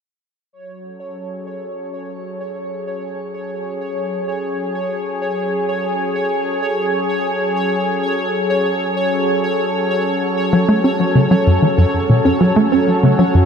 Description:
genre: ambient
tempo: free time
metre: none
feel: none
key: F# minor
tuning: A4 = 440 Hz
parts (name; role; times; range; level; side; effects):
- lush unison pad; sustained chords; 0.5-13.5 s; F#3 to A4; -20 LUFS; equal; chorus, shimmer reverb
- pulsing gated texture; texture; 0.5-13.5 s; C#5; -23 LUFS; equal; chorus, built-in reverb, shimmer reverb
- tight sequencer bass; riff; 10.5-13.5 s; F#2 to C#4; -13 LUFS; equal; analog chorus, analog delay
room: wet huge ambient reverb, RT60 8.4 s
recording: none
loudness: -15 LUFS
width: side -7 dB against mid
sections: 0.5-13.5 A section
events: fade-in on analog synth pad 0.5-13.5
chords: 0.5 F#madd9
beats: free time

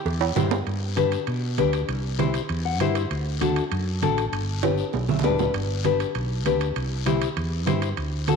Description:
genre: latin, cumbia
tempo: 197 BPM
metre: 4/4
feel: straight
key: G major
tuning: A4 = 440 Hz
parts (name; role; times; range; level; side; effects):
- mellow fretless electric bass; bass; 0.1-8.4 s; G1 to B2; -27 LUFS; right 1 dB; none
- congas; percussion; 0.1-8.4 s; none; -29 LUFS; right 10 dB; none
- cowbell and timbales; percussion; 0.1-8.4 s; none; -31 LUFS; right 11 dB; none
- guiro; percussion; 0.1-8.4 s; none; -38 LUFS; left 11 dB; none
- nylon-string guitar; accompaniment; 0.4-8.4 s; D4 to F#5; -26 LUFS; left 9 dB; none
room: moderate echo chamber reverb, RT60 2.0 s, small room ambience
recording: 1960s-style stereo with parts hard left and right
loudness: -22 LUFS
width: side -5 dB against mid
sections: 0.7-8.4 A section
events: drum fill 0.2-0.7, 4.6-5.5; nylon-string guitar fill 2.5-3.1, 4.9-5.5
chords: 0.0 C; 0.7 G; 1.9 C; 3.1 D; 4.3 G; 6.8 C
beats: 0.06 0.36 | 0.67 0.97 1.28 1.58 | 1.89 2.19 2.50 2.80 | 3.11 3.41 3.72 4.02 | 4.33 4.63 4.94 5.24 | 5.54 5.85 6.15 6.46 | 6.76 7.07 7.37 7.67 | 7.98 8.28

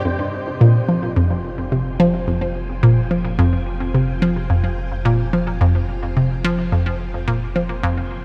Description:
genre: ambient, sequencer-driven space music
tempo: 108 BPM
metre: 4/4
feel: straight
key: F dorian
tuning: A4 = 440 Hz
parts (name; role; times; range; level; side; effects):
- string machine, full ensemble; sustained chords; 0.0-8.2 s; C4 to Ab5; -34 LUFS; equal; ensemble chorus, shimmer reverb
- round analog bass; bass; 0.0-8.2 s; F1; -30 LUFS; equal; none
- hollow square pluck; riff; 0.1-8.0 s; F2 to F3; -19 LUFS; equal; chorus, tape echo
room: moderate huge ambient reverb, RT60 8.2 s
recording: none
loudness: -19 LUFS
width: mono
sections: 0.1-8.2 A section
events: fade-in on string machine 0.1-8.2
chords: 0.1 Fm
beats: | 0.05 0.61 1.17 1.72 | 2.28 2.83 3.39 3.94 | 4.50 5.05 5.61 6.17 | 6.72 7.28 7.83

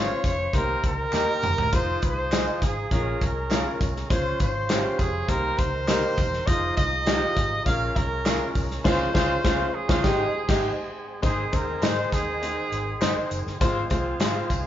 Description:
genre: uptempo 1960s-style soul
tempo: 101 BPM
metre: 4/4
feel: straight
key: Ab major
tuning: A4 = 437 Hz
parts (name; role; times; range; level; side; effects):
- clear trumpet; melody; 0.0-13.3 s; Ab4 to F5; -28 LUFS; equal; none
- bright grand piano; accompaniment; 0.0-14.6 s; Ab3 to Eb5; -30 LUFS; left 1 dB; none
- overdriven tonewheel organ; sustained chords; 0.0-14.7 s; Eb3 to C5; -36 LUFS; right 1 dB; none
- electric guitar through a small old amp; stabs; 0.0-14.3 s; G4 to F5; -31 LUFS; right 2 dB; none
- vintage muted fingered electric bass; bass; 0.0-14.7 s; Fb1 to Ab2; -32 LUFS; equal; none
- natural country drum kit; drums; 0.2-14.6 s; crash cymbal, hi-hat, kick drum, snare drum, toms; -26 LUFS; equal; none
- tambourine and handclaps; percussion; 0.2-14.6 s; none; -38 LUFS; equal; none
- clear horn section; second line; 8.9-14.7 s; Ab3 to C5; -35 LUFS; equal; none
room: wet large studio reverb, RT60 1.2 s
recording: band playing live in one room, nothing above 7.5 kHz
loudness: -22 LUFS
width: side -11 dB against mid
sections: 0.0-11.2 A section; 11.2-14.7 B section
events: drum fill 1.1-1.7; band accent 8.9-11.2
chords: 0.0 Dbmaj7; 0.5 Cm7; 1.7 Fm7; 2.9 Bbm7; 4.1 Dbmaj7; 5.3 Cm7; 6.5 Fm7; 7.7 Bbm7; 8.9 Dbmaj7; 10.0 Abmaj7; 11.2 Ab; 13.6 Fm/Ab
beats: 0.53 1.13 | 1.72 2.32 2.91 3.51 | 4.10 4.70 5.29 5.88 | 6.48 7.07 7.67 8.26 | 8.85 9.45 10.04 10.64 | 11.23 11.82 12.42 13.01 | 13.61 14.20

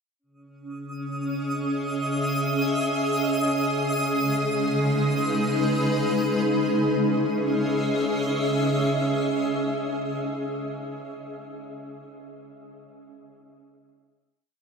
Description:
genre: ambient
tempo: free time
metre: none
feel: none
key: C# minor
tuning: A4 = 445 Hz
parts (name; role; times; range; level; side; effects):
- granular cloud pad; sustained chords; 0.7-10.4 s; C#3 to E5; -24 LUFS; equal; built-in reverb
- organ-like drone; drone; 0.7-10.6 s; C#3; -34 LUFS; equal; ensemble chorus, built-in reverb
- twinkling granular texture; texture; 0.9-6.6 s; D#6; -32 LUFS; right 1 dB; built-in reverb
room: wet huge ambient reverb, RT60 8.4 s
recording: none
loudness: -22 LUFS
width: side -5 dB against mid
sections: 0.2-6.5 A section; 6.5-9.7 final chord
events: fade-in on synth texture 0.2-6.5; fade-out on synth drone 0.2-6.5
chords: 0.2 C#m; 3.4 G#m/C#; 6.5 C#m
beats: free time

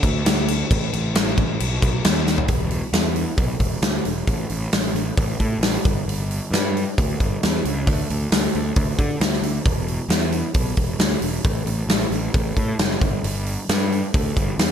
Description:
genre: hard rock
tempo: 134 BPM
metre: 4/4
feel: straight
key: E dorian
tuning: A4 = 441 Hz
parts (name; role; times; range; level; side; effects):
- fuzz picked electric bass; bass; 0.0-14.7 s; E1 to D3; -23 LUFS; equal; overdrive
- big rock drum kit; drums; 0.0-14.7 s; crash cymbal, hi-hat, kick drum, snare drum, toms; -20 LUFS; equal; gated reverb
room: light reverb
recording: bright 1980s-style digital production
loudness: -19 LUFS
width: side -8 dB against mid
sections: 0.0-2.5 A section; 2.5-14.7 B section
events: drum fill 2.3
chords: none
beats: 0.25 | 0.69 1.14 1.59 2.04 | 2.48 2.93 3.38 3.83 | 4.27 4.72 5.17 5.62 | 6.07 6.52 6.96 7.41 | 7.86 8.31 8.76 9.21 | 9.66 10.10 10.55 11.00 | 11.45 11.90 12.35 12.79 | 13.24 13.69 14.14 14.59

